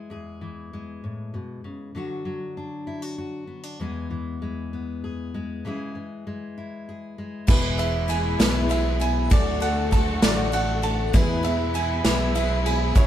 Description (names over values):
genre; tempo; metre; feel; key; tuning
indie folk with a building arrangement; 65 BPM (dotted quarters); 6/8; straight; E mixolydian; A4 = 440 Hz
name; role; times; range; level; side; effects
fingerpicked steel-string acoustic guitar; accompaniment; 0.0-9.3 s; E2 to G#4; -32 LUFS; left 2 dB; none
felt-muted upright piano; accompaniment; 7.5-13.1 s; C#2 to E5; -35 LUFS; right 3 dB; none
picked twelve-string acoustic guitar; accompaniment; 7.5-13.1 s; C#3 to A4; -28 LUFS; left 5 dB; none
dark chamber string section; sustained chords; 7.5-13.1 s; B2 to F#4; -32 LUFS; equal; none
bright upright piano; arpeggios; 7.5-13.1 s; B4 to A5; -28 LUFS; right 4 dB; none
fingered electric bass; bass; 7.5-13.1 s; E1 to E2; -26 LUFS; equal; none
unplugged drum kit; drums; 7.5-13.1 s; crash cymbal, kick drum, ride cymbal, snare drum; -23 LUFS; right 1 dB; none
room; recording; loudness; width
moderate stone room reverb, RT60 0.9 s; band playing live in one room; -22 LUFS; side -11 dB against mid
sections
0.0-7.5 A section; 7.5-13.1 B section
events
none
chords
0.1 E; 2.0 D; 3.8 E; 5.6 C#m; 7.5 E; 9.3 D; 11.1 E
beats
| 0.10 1.03 | 1.95 2.88 | 3.80 4.72 | 5.64 6.56 | 7.48 8.39 | 9.31 10.22 | 11.13 12.04 | 12.95